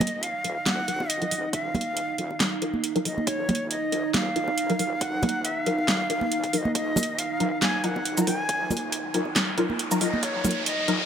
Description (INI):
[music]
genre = deep dubstep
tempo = 138 BPM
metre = 4/4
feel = swing 55% on 16ths, half-time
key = Eb minor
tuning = A4 = 440 Hz
[part]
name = breathy bright ney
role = melody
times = 0.0-11.1 s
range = Db5 to Bb5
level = -29 LUFS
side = equal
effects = dub echo
[part]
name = dark analog pad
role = sustained chords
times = 0.3-11.1 s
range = Eb4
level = -32 LUFS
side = right 2 dB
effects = chorus, phaser
[part]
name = filtered dub chord stab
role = stabs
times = 0.0-11.0 s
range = Gb3 to Bb4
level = -28 LUFS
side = left 1 dB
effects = ensemble chorus, dub echo
[part]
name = wobble bass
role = bass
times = 0.0-11.1 s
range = Eb1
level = -39 LUFS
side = equal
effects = chorus, tube saturation, high-pass filter
[part]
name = dubstep drum kit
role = drums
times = 0.0-11.0 s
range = handclaps, hi-hat, shaker, snare drum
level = -27 LUFS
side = right 1 dB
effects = small room reverb
[part]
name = electronic kick drum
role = drums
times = 0.0-10.5 s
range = none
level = -37 LUFS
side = equal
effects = overdrive, high-pass filter on kick, small room reverb, high-pass filter on room
[part]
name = congas and bongos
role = percussion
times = 0.0-10.5 s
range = none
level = -30 LUFS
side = right 2 dB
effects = none
[part]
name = riser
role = sound effects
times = 7.8-11.1 s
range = none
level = -33 LUFS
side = equal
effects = none
[sound]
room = moderate spring reverb, RT60 2.4 s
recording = none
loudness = -23 LUFS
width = side -8 dB against mid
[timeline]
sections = 0.0-11.1 A section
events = build-up 0.0-11.1; filter sweep on synth stab 0.0-11.1; riser 7.8-11.1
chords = 0.0 Ebmadd9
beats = 0.23 0.66 1.10 | 1.53 1.97 2.40 2.84 | 3.27 3.71 4.14 4.58 | 5.01 5.45 5.88 6.32 | 6.75 7.18 7.62 8.05 | 8.49 8.92 9.36 9.79 | 10.23 10.66